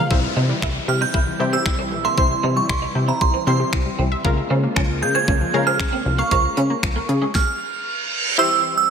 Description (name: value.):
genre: dance-pop.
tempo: 116 BPM.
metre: 4/4.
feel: straight.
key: unclear.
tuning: A4 = 440 Hz.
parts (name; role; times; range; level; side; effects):
filtered supersaw swell; sustained chords; 0.0-8.9 s; C3 to G4; -30 LUFS; left 1 dB; sidechain pumping.
wide unison pluck; arpeggios; 0.0-7.3 s; E3 to F5; -28 LUFS; left 3 dB; sidechain pumping, ping-pong delay, slapback echo.
twelve-string electric guitar; riff; 0.0-7.3 s; Ab3 to E4; -29 LUFS; right 4 dB; ensemble chorus, slapback echo.
analog pluck; accompaniment; 0.1-8.9 s; G3 to C5; -26 LUFS; left 5 dB; chorus, sidechain pumping, slapback echo.
plucky analog bass; bass; 0.1-7.3 s; Bb1 to Db3; -22 LUFS; equal; sidechain pumping.
pop drum kit; drums; 0.1-7.5 s; finger snaps, hi-hat, kick drum, snare drum; -22 LUFS; equal; none.
downlifter and reverse cymbal; sound effects; 0.1-8.4 s; none; -27 LUFS; right 2 dB; slapback echo.
glassy synth bell; melody; 0.9-8.9 s; Bb5 to Ab6; -22 LUFS; right 6 dB; chorus, phaser, slapback echo.
room: moderate lush hall reverb, RT60 2.0 s.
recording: big arena sound.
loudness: -17 LUFS.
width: side -7 dB against mid.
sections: 0.1-8.4 A section.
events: stop 7.3-8.4; reverse cymbal 7.6-8.4.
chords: 0.1 C; 4.2 Bbm7; 8.4 C.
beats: | 0.11 0.62 1.14 1.66 | 2.18 2.69 3.21 3.73 | 4.25 4.76 5.28 5.80 | 6.31 6.83 7.35 7.87 | 8.38.